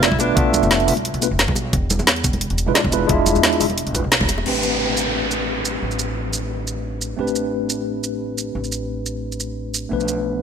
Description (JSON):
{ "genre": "liquid drum and bass", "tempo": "176 BPM", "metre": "4/4", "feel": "swing 53% on 16ths", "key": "A minor", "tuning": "A4 = 440 Hz", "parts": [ { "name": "warm tenor saxophone", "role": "melody", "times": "0.0-0.7 s", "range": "D4 to E4", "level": "-26 LUFS", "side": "right 1 dB", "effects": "ping-pong delay" }, { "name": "tine electric piano", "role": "accompaniment", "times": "0.0-10.4 s", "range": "F3 to E5", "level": "-22 LUFS", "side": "equal", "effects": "medium stereo tremolo, digital delay" }, { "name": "upright bass", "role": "bass", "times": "0.0-10.4 s", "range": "E1 to E2", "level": "-25 LUFS", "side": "equal", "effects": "none" }, { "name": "drum and bass drum kit", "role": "drums", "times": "0.0-10.2 s", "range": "crash cymbal, hi-hat, shaker, snare drum", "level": "-20 LUFS", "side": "equal", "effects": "overdrive" }, { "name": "electronic kick drum", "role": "drums", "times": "0.1-4.3 s", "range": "none", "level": "-23 LUFS", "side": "equal", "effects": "overdrive" }, { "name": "congas and bongos", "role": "percussion", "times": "0.1-4.4 s", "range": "none", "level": "-29 LUFS", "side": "right 1 dB", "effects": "none" }, { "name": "downlifter", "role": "sound effects", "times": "4.5-7.2 s", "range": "none", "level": "-24 LUFS", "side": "equal", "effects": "none" } ], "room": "moderate lush hall reverb, RT60 1.7 s", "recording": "none", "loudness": "-18 LUFS", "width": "side -7 dB against mid", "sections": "0.0-4.5 A section; 4.5-10.4 B section", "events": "drop 0.0-4.5; band accent 4.1", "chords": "0.0 Bm7b5; 1.7 E7b9; 4.5 Am11; 9.9 Bm7b5" }